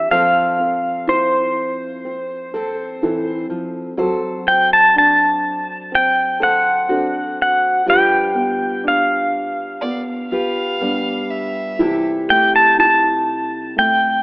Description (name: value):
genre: acoustic folk-pop ballad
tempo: 62 BPM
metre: 4/4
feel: straight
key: C major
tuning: A4 = 440 Hz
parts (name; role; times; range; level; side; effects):
- pedal steel guitar; melody; 0.0-14.2 s; C5 to A5; -14 LUFS; equal; none
- fingerpicked steel-string acoustic guitar; accompaniment; 0.0-14.2 s; G2 to C5; -26 LUFS; left 1 dB; none
- felt-muted upright piano; arpeggios; 0.0-14.2 s; E3 to A4; -23 LUFS; right 1 dB; none
- rich violin; second line; 9.8-12.0 s; D5 to F5; -26 LUFS; right 1 dB; none
room: moderate lush hall reverb, RT60 2.7 s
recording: rough home demo mix, AM radio sound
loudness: -14 LUFS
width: side -27 dB against mid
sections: 0.0-14.2 A section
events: none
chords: 0.1 Fmaj7; 4.0 D7/F#; 7.9 G7; 11.8 C6